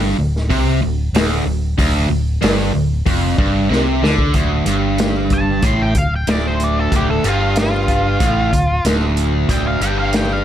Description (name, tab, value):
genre	blues rock power trio and southern rock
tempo	94 BPM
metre	4/4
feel	straight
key	D minor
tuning	A4 = 440 Hz
part	distorted electric guitar	riff	0.0-10.4 s	D2 to D3	-18 LUFS	right 1 dB	overdrive
part	fingered electric bass	bass	0.0-10.4 s	D1 to D2	-19 LUFS	equal	none
part	vintage drum kit	drums	0.4-10.3 s	hi-hat, kick drum, snare drum	-20 LUFS	equal	none
part	octave-fuzz lead guitar	melody	5.3-10.4 s	F4 to C6	-21 LUFS	equal	wah, distortion
room	light reverb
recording	none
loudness	-14 LUFS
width	side -10 dB against mid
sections	0.0-4.4 A section; 4.4-10.4 B section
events	drum fill 3.7-4.4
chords	0.0 Dm